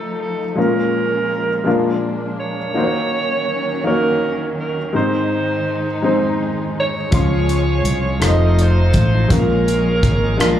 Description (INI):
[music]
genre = slow gospel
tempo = 55 BPM (dotted quarters)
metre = 6/8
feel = straight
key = unclear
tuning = A4 = 442 Hz
[part]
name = clear alto saxophone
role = melody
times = 0.0-10.6 s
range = A4 to Eb5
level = -22 LUFS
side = right 3 dB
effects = plate reverb, slapback echo
[part]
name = clear grand piano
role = accompaniment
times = 0.0-10.6 s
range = Ab2 to C6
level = -20 LUFS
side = left 3 dB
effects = plate reverb, slapback echo
[part]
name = dark studio string section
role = sustained chords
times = 0.0-10.6 s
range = Eb3 to Eb4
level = -26 LUFS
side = right 1 dB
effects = plate reverb
[part]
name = overdriven tonewheel organ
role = sustained chords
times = 7.1-10.6 s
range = Gb3 to Db5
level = -27 LUFS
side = right 2 dB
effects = slow rotary speaker
[part]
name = fingered electric bass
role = bass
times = 7.1-10.6 s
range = F1 to Db2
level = -16 LUFS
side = equal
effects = none
[part]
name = modern studio drum kit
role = drums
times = 7.1-10.6 s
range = hi-hat, kick drum, rim click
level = -19 LUFS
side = equal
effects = none
[sound]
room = light reverb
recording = live gig heard through the venue's PA, club reverb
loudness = -15 LUFS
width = side -10 dB against mid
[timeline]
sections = 0.0-10.6 A section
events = none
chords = 0.0 F7; 0.6 Bbm7; 1.7 Bb7; 2.8 Ebm7; 4.9 Ab; 7.1 Dbmaj7; 8.2 F7; 9.3 Bbm7